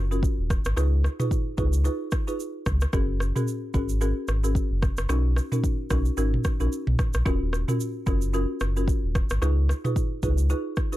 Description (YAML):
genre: afrobeats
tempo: 111 BPM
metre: 4/4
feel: swing 58% on 16ths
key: unclear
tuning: A4 = 440 Hz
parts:
  - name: sub bass with octave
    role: bass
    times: 0.0-10.5 s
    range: D#1 to C#2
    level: -24 LUFS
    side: equal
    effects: none
  - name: folk marimba with medium mallets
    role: accompaniment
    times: 0.1-11.0 s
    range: C#4 to B4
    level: -30 LUFS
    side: equal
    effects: none
  - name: afro-pop drum kit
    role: drums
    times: 0.1-11.0 s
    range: kick drum, rim click, shaker, toms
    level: -26 LUFS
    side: equal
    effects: none
room: little or no reverb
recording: dark, warm production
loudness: -23 LUFS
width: side -15 dB against mid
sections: 0.0-11.0 A section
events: none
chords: 0.0 D#m7; 0.8 C#7; 2.9 F#add9; 5.1 Bmaj7; 7.3 D#m7; 9.4 C#7